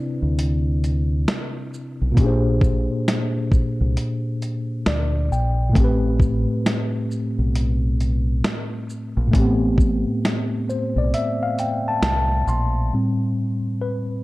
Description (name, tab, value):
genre	lo-fi hip hop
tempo	67 BPM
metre	4/4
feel	swing 63% on 16ths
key	A minor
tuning	A4 = 442 Hz
part	mellow tine electric piano	accompaniment	0.0-14.2 s	A2 to C6	-22 LUFS	left 1 dB	medium stereo tremolo, cassette tape
part	deep dub fingered electric bass	bass	0.2-12.9 s	A1 to D2	-21 LUFS	equal	none
part	dusty soul sampler-style drum kit	drums	0.4-12.7 s	hi-hat, kick drum, shaker, snare drum	-21 LUFS	equal	none
room	light reverb, digital ambience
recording	dark, warm production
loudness	-19 LUFS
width	side -19 dB against mid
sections	0.0-12.9 A section; 12.9-14.2 B section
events	tine electric piano fill 4.4-5.8, 10.2-12.9; tine electric piano solo 12.9-14.2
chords	0.0 Cmaj9; 2.2 Bb13; 5.8 Am9